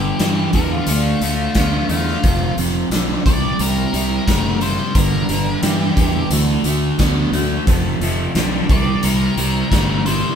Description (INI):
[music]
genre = classic rock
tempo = 88 BPM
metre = 4/4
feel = straight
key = G major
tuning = A4 = 440 Hz
[part]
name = octave-fuzz lead guitar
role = melody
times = 0.0-10.4 s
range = F4 to D5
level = -25 LUFS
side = left 1 dB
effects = distortion
[part]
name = picked steel-string acoustic guitar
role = accompaniment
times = 0.0-10.4 s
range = G2 to D5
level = -27 LUFS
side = right 1 dB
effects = none
[part]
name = biting overdriven guitar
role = riff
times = 0.0-10.4 s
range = F2 to B3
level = -22 LUFS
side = left 4 dB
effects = phaser
[part]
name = overdriven semi-hollow guitar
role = riff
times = 0.0-10.4 s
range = F2 to B3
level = -23 LUFS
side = right 7 dB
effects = none
[part]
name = fuzz fingered electric bass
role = bass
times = 0.0-10.2 s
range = F1 to G2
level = -21 LUFS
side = equal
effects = overdrive
[part]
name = big rock drum kit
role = drums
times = 0.2-10.2 s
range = hi-hat, kick drum, snare drum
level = -20 LUFS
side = equal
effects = none
[sound]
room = moderate stone room reverb, RT60 1.3 s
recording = band playing live in one room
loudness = -15 LUFS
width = side -8 dB against mid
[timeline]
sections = 0.0-10.4 A section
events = lead electric guitar solo 0.0-10.4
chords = 0.0 G; 0.9 Dsus2; 2.2 F; 3.2 C; 4.9 G; 6.3 Dadd9; 7.7 F; 8.7 C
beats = 0.19 0.87 1.55 | 2.23 2.91 3.59 4.26 | 4.95 5.62 6.30 6.98 | 7.66 8.34 9.03 9.71